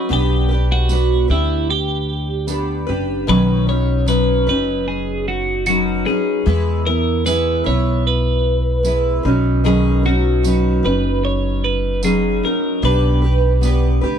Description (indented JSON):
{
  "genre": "acoustic pop",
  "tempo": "75 BPM",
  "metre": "4/4",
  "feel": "straight",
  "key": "B major",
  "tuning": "A4 = 440 Hz",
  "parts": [
    { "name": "twelve-string electric guitar", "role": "melody", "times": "0.0-14.2 s", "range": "E4 to C#5", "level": "-21 LUFS", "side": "right 1 dB", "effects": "phaser" },
    { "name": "picked steel-string acoustic guitar", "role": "accompaniment", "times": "0.0-14.2 s", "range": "B2 to B4", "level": "-20 LUFS", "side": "equal", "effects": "double-tracked left and right" },
    { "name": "upright bass", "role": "bass", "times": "0.1-14.2 s", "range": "F#1 to E2", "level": "-18 LUFS", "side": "equal", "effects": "none" },
    { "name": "tambourine", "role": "percussion", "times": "0.9-13.8 s", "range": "none", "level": "-31 LUFS", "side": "right 12 dB", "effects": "none" }
  ],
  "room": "small room reverb",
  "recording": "dry, close 1970s-style studio recording",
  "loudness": "-15 LUFS",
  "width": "side -8 dB against mid",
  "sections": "0.0-14.2 A section",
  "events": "none",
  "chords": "0.1 G/B; 3.3 Badd9; 6.5 E; 9.2 Badd9; 12.8 G/B",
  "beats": "| 0.10 0.90 1.69 2.49 | 3.28 4.08 4.87 5.67 | 6.46 7.26 8.05 8.85 | 9.64 10.44 11.24 12.03 | 12.83 13.63"
}